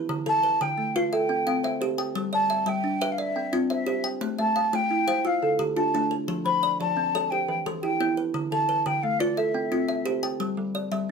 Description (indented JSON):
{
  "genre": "southern african traditional, mbira-style interlocking cycle",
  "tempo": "116 BPM (dotted quarters)",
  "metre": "12/8",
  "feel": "straight",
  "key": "G mixolydian",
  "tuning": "A4 = 438 Hz",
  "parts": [
    { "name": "kalimba", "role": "arpeggios", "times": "0.0-11.1 s", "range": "D3 to G5", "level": "-28 LUFS", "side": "left 1 dB", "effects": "none" },
    { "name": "kalimba", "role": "arpeggios", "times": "0.0-11.1 s", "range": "D3 to E6", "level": "-30 LUFS", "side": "right 5 dB", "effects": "none" },
    { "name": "breathy mellow wooden flute", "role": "melody", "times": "0.3-10.2 s", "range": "D5 to B5", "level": "-25 LUFS", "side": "left 1 dB", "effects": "none" }
  ],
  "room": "little or no reverb",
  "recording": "close, detailed microphones",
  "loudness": "-23 LUFS",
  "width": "side -5 dB against mid",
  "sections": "0.0-10.4 A section",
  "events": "none",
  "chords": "0.1 Dm; 1.1 C; 2.2 G; 3.2 C; 4.2 Am; 5.3 Dm; 6.3 F; 7.3 Em; 8.3 Dm; 9.4 C; 10.4 G5"
}